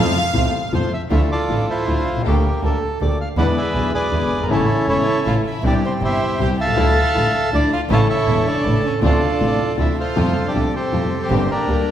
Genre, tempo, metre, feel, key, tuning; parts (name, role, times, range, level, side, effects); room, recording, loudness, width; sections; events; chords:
tango; 159 BPM; 3/4; rubato; D minor; A4 = 438 Hz
warm chamber violin section; second line; 0.0-0.7, 4.9-11.9 s; Bb3 to F5; -24 LUFS; equal
warm baby grand piano; accompaniment; 0.0-11.8 s; E1 to G4; -22 LUFS; left 2 dB
rich studio string section; stabs; 0.0-11.8 s; F3 to A4; -30 LUFS; right 2 dB
dark double bass; bass; 0.0-11.8 s; E1 to F2; -21 LUFS; right 1 dB
bandoneon; melody; 0.7-11.9 s; Bb3 to A5; -20 LUFS; right 1 dB
wet recital hall reverb, RT60 1.5 s; recorded in a church or concert hall; -16 LUFS; side -10 dB against mid
0.0-1.1 A section; 1.1-10.2 B section; 10.2-11.9 C section
violin section solo 0.0-1.1
0.0 F; 1.1 Dmadd9; 2.2 Gmadd9/D; 3.4 E7; 4.5 A; 5.6 C; 6.8 Dmadd9; 7.9 A; 9.0 Dm7; 10.2 Fadd9; 11.3 Gm